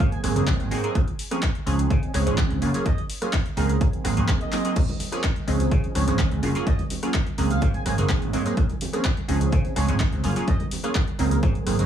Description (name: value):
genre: filtered disco house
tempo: 126 BPM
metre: 4/4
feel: straight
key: unclear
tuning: A4 = 440 Hz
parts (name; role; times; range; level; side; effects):
- muted trumpet section; melody; 0.0-11.4 s; Bb4 to Ab5; -36 LUFS; right 1 dB; sidechain pumping, dub echo
- funky polysynth comp; accompaniment; 0.0-11.9 s; F3 to Ab4; -27 LUFS; right 2 dB; chorus, phaser, sidechain pumping
- vintage slap bass; bass; 0.0-11.9 s; Gb1 to Db3; -24 LUFS; equal; tube saturation, sidechain pumping
- electronic kick drum; drums; 0.0-11.5 s; none; -24 LUFS; equal; overdrive
- punchy analog drum machine; drums; 0.0-11.9 s; crash cymbal, handclaps, hi-hat, rim click; -32 LUFS; left 1 dB; overdrive, sidechain pumping on hats, sidechain pumping on cymbals
- maracas and congas; percussion; 4.8-11.9 s; none; -34 LUFS; right 4 dB; sidechain pumping on perc
room: little or no reverb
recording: small room ambience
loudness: -21 LUFS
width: side -9 dB against mid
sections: 0.0-11.9 A section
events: drum fill 4.5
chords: 0.0 Ab7; 1.0 Bbm9; 1.7 Dbmaj9; 2.6 Gbmaj7; 3.8 Ab7; 4.8 Bbm9; 5.5 Dbmaj9; 6.4 Gbmaj7; 7.6 Ab7; 8.6 Bbm9; 9.3 Dbmaj9; 10.2 Gbmaj7